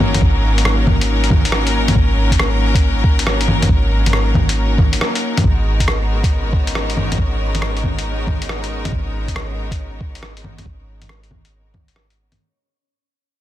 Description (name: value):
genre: future garage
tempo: 138 BPM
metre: 4/4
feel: swing 65% on 16ths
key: G# minor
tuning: A4 = 441 Hz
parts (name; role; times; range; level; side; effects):
- clear studio string section; sustained chords; 0.0-12.4 s; F#3 to A#4; -22 LUFS; left 2 dB; sidechain pumping
- soft 808-style bass; bass; 0.0-12.4 s; G#1; -19 LUFS; equal; sidechain pumping
- lo-fi sampler-style drum kit; drums; 0.0-12.4 s; bongos, hi-hat, rim click; -20 LUFS; equal; soft clipping on snare
- electronic kick drum; drums; 0.2-11.9 s; none; -17 LUFS; equal; none
- wind-like tuned noise texture; texture; 6.1-12.4 s; C#4 to C#5; -34 LUFS; left 2 dB; built-in reverb
room: little or no reverb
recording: dense, heavily limited modern master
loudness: -14 LUFS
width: side -13 dB against mid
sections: 0.0-5.4 A section; 5.4-12.4 B section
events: break 5.0-5.4; fade-out 5.4-12.4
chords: 0.0 D#m7/G#; 5.4 G#m9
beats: | 0.22 0.65 1.09 1.52 | 1.96 2.39 2.83 3.26 | 3.69 4.13 4.56 5.00 | 5.43 5.87 6.30 6.74 | 7.17 7.61 8.04 8.48 | 8.91 9.35 9.78 10.22 | 10.65 11.09 11.52 11.96